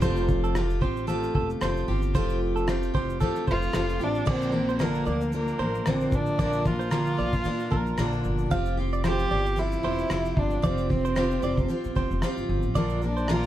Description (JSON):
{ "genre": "acoustic pop", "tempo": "113 BPM", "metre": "4/4", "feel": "swing 55% on 16ths", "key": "F major", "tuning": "A4 = 440 Hz", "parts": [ { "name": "picked steel-string acoustic guitar", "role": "accompaniment", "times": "0.0-13.5 s", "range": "Bb2 to Bb4", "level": "-28 LUFS", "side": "equal", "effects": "none" }, { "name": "direct-recorded clean electric guitar", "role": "arpeggios", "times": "0.0-13.5 s", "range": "A4 to F5", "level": "-33 LUFS", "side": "right 4 dB", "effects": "none" }, { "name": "upright bass", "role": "bass", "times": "0.0-13.5 s", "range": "E1 to Bb2", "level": "-30 LUFS", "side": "equal", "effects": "none" }, { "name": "cloth-damped thuddy drum kit", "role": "drums", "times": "0.0-13.5 s", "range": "crash cymbal, kick drum, rim click, shaker", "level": "-29 LUFS", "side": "equal", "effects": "none" }, { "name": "dark violin", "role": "melody", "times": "3.5-13.5 s", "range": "Bb3 to G4", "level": "-29 LUFS", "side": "right 1 dB", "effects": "plate reverb" } ], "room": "moderate booth ambience, RT60 0.2 s", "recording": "heard from further back in the room, lossy compression artefacts", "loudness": "-23 LUFS", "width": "side -12 dB against mid", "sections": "0.0-4.3 A section; 4.3-13.5 B section", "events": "none", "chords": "0.0 Fadd9; 4.3 Bb; 8.5 Fsus2; 12.8 Bb" }